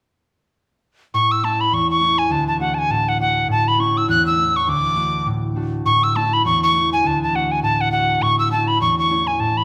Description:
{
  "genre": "celtic folk",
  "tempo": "203 BPM",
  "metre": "4/4",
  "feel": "swing 57% on 8ths",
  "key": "A major",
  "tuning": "A4 = 440 Hz",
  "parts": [
    { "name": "tin whistle", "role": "melody", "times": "1.1-9.6 s", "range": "F#5 to F#6", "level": "-19 LUFS", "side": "equal", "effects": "none" },
    { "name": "concert harp", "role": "accompaniment", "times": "1.1-9.6 s", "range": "D2 to F#4", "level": "-24 LUFS", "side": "equal", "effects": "none" }
  ],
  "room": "moderate recital hall reverb, RT60 1.6 s",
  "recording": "none",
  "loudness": "-18 LUFS",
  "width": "mono",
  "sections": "1.1-9.6 A section",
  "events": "none",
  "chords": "1.1 A; 2.3 D; 3.5 A; 4.7 D; 5.9 A; 7.0 D; 8.2 A"
}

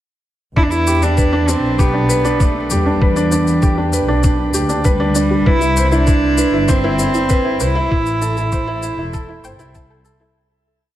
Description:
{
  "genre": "piano and strings electronica",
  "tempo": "98 BPM",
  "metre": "4/4",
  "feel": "straight",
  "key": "E minor",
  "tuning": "A4 = 440 Hz",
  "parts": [
    { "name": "warm cello", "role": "melody", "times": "0.6-9.8 s", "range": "G3 to E4", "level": "-19 LUFS", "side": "right 1 dB", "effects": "shimmer reverb" },
    { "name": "soft round pluck", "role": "arpeggios", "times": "0.6-10.3 s", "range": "D4 to A5", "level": "-29 LUFS", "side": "right 3 dB", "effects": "none" },
    { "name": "felt-muted upright piano", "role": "riff", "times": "0.6-10.4 s", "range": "D4 to C5", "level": "-19 LUFS", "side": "right 1 dB", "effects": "digital delay, shimmer reverb" },
    { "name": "dark studio double bass section", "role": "bass", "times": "0.6-10.3 s", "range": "E1 to E2", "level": "-19 LUFS", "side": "left 1 dB", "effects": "sidechain pumping" },
    { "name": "electronic kick drum", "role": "drums", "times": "0.6-9.9 s", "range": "none", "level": "-15 LUFS", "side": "equal", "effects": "none" },
    { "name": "shaker", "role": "drums", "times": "0.7-10.2 s", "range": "none", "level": "-26 LUFS", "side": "left 6 dB", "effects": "overdrive, high-pass filter on perc, high-pass filter on room" }
  ],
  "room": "moderate concert hall reverb, RT60 2.2 s",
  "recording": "none",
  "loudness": "-13 LUFS",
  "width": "side -13 dB against mid",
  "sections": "0.6-10.4 build",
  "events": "build-up 0.6-10.4; fade-out 7.1-10.4",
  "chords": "0.6 Em7; 5.5 Cmaj7; 7.9 Am7"
}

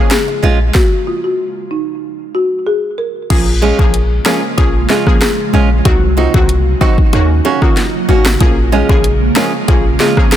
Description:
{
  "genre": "dancehall",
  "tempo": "94 BPM",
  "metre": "4/4",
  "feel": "straight",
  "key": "Bb minor",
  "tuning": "A4 = 440 Hz",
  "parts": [
    { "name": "synth brass stab", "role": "accompaniment", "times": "0.0-10.3 s", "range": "Eb3 to Ab4", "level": "-20 LUFS", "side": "left 1 dB", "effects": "chorus, sidechain pumping" },
    { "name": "ethereal airy pad", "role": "sustained chords", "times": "0.0-10.4 s", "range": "C3 to Gb4", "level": "-21 LUFS", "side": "right 2 dB", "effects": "ensemble chorus, built-in reverb, sidechain pumping" },
    { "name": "folk marimba with medium mallets", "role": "melody", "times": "0.1-10.4 s", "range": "Eb4 to Bb4", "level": "-18 LUFS", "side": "left 2 dB", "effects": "tape echo" },
    { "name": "afro-pop drum kit", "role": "drums", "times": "0.1-10.4 s", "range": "crash cymbal, hi-hat, kick drum, rim click, snare drum", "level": "-13 LUFS", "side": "equal", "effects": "none" },
    { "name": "nylon-string guitar", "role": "arpeggios", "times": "0.3-10.2 s", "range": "Ab3 to Gb4", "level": "-19 LUFS", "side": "right 6 dB", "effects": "tape echo" },
    { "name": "clean 808-style bass", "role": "bass", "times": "0.4-10.0 s", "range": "Ab1 to Eb2", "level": "-13 LUFS", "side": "equal", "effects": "none" },
    { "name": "bongos", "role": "percussion", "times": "0.4-10.2 s", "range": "none", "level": "-26 LUFS", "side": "left 6 dB", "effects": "none" }
  ],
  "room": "digital ambience",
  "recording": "dense, heavily limited modern master",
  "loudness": "-10 LUFS",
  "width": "side -11 dB against mid",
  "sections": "0.0-3.3 A section; 3.3-10.4 B section",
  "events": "stop 0.7-3.3",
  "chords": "0.0 Bbm7; 0.7 N.C.; 3.3 Bbm7; 5.9 Cdim; 7.1 Ebm7; 8.4 Bbm7"
}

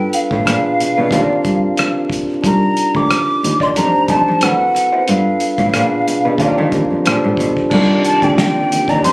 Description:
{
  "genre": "R&B, neo-soul",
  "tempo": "91 BPM",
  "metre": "4/4",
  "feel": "swing 55% on 16ths",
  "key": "C dorian",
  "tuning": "A4 = 435 Hz",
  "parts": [
    { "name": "mellow hollow silver concert flute", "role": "melody", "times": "0.0-9.1 s", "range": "F5 to D6", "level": "-17 LUFS", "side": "equal", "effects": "slapback echo" },
    { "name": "barky tine electric piano", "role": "accompaniment", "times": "0.0-9.1 s", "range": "A3 to C5", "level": "-18 LUFS", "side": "equal", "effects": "overdrive" },
    { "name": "cloth-damped thuddy drum kit", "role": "drums", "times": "0.1-9.1 s", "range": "crash cymbal, hi-hat, kick drum, rim click, snare drum", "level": "-20 LUFS", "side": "equal", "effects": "none" },
    { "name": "rich cello", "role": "bass", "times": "0.3-9.1 s", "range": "C2 to F3", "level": "-18 LUFS", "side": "equal", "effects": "none" },
    { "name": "electric guitar through a small old amp", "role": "second line", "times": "1.0-9.0 s", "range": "D4 to D5", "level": "-21 LUFS", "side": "right 1 dB", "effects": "wah" },
    { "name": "warm studio string section", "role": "sustained chords", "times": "7.7-9.1 s", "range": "C3 to D5", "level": "-22 LUFS", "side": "right 1 dB", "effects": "none" }
  ],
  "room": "light reverb, small room ambience",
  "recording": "recorded on a phone in the room, club reverb, vinyl crackle, compression",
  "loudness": "-12 LUFS",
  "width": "side -23 dB against mid",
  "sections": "0.0-7.7 A section; 7.7-9.1 B section",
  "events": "none",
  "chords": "0.5 Bb7b9; 1.1 Ebmaj9 (rootless); 2.4 Cm9 (rootless); 3.8 F7; 4.4 D9; 5.1 G9; 5.7 Bb7b9; 6.4 Ebmaj9; 7.0 Bb69; 7.7 Cm9"
}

